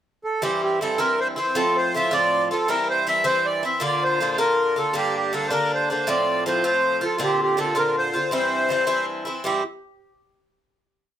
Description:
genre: celtic folk, Celtic jig.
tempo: 106 BPM (dotted quarters).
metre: 6/8.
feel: straight.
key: C mixolydian.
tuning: A4 = 438 Hz.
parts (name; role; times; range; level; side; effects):
accordion; melody; 0.2-9.6 s; F4 to E5; -22 LUFS; right 1 dB; plate reverb.
Irish bouzouki; accompaniment; 0.4-9.6 s; G2 to F4; -24 LUFS; left 1 dB; none.
room: light reverb.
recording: none.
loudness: -20 LUFS.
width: side -10 dB against mid.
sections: 0.0-0.4 pickup bar; 0.4-9.4 A section; 9.4-10.6 final chord.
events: none.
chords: 0.4 C; 1.5 F; 2.7 C; 3.8 Bb; 4.9 Gm; 6.1 F; 7.2 Bbadd9; 8.3 C.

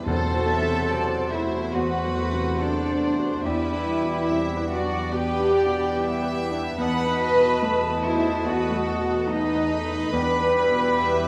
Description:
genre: cinematic.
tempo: 72 BPM.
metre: 4/4.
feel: rubato.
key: E minor.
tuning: A4 = 440 Hz.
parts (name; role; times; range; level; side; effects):
clear studio violin section; melody; 0.0-11.3 s; A4 to F#5; -37 LUFS; equal; none.
clear concert grand piano; accompaniment; 0.0-11.3 s; E2 to C5; -32 LUFS; equal; none.
warm studio viola section; accompaniment; 0.0-11.3 s; F#3 to F#4; -36 LUFS; equal; none.
warm studio double bass section; bass; 0.0-11.3 s; E2; -34 LUFS; equal; none.
dark cor anglais; second line; 0.1-11.3 s; C5 to D#5; -34 LUFS; equal; none.
silver concert flute; second line; 0.1-11.3 s; F#5 to A5; -37 LUFS; equal; none.
warm studio violin section; second line; 0.1-11.3 s; D5 to B5; -36 LUFS; equal; none.
dark French horn section; sustained chords; 0.1-11.3 s; F#3 to B4; -31 LUFS; equal; none.
dark studio cello section; bass; 0.1-11.3 s; D4 to B4; -28 LUFS; equal; none.
timpani; percussion; 0.1-1.3 s; E2; -33 LUFS; equal; none.
room: wet scoring stage reverb, RT60 1.9 s.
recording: none.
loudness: -23 LUFS.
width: mono.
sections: 0.0-11.3 A section.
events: none.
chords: 0.1 F#dim/E; 3.4 Em7; 6.8 B7/E; 10.1 Em7.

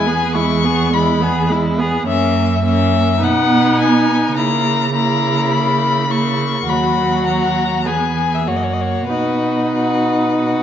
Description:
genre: quick classical-period movement for string quartet.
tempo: 103 BPM.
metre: 4/4.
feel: uneven beats, rubato.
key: B major.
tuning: A4 = 440 Hz.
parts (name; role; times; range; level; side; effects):
rich violin; melody; 0.0-10.6 s; B4 to C#6; -20 LUFS; left 7 dB; none.
rich violin; second line; 0.0-10.6 s; C#4 to G#4; -20 LUFS; left 2 dB; none.
rich viola; accompaniment; 0.0-10.6 s; F#3 to D#4; -20 LUFS; right 2 dB; none.
warm cello; bass; 0.0-10.6 s; D#2 to C#3; -19 LUFS; right 4 dB; none.
room: wet recital hall reverb, RT60 1.3 s.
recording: nothing above 7.6 kHz.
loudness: -14 LUFS.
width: side -9 dB against mid.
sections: 0.0-10.6 A section.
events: none.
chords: 0.0 E; 2.1 F#7; 3.2 B; 4.4 A#dim/C#; 6.7 B/D#; 7.9 E; 8.5 F#; 9.1 B.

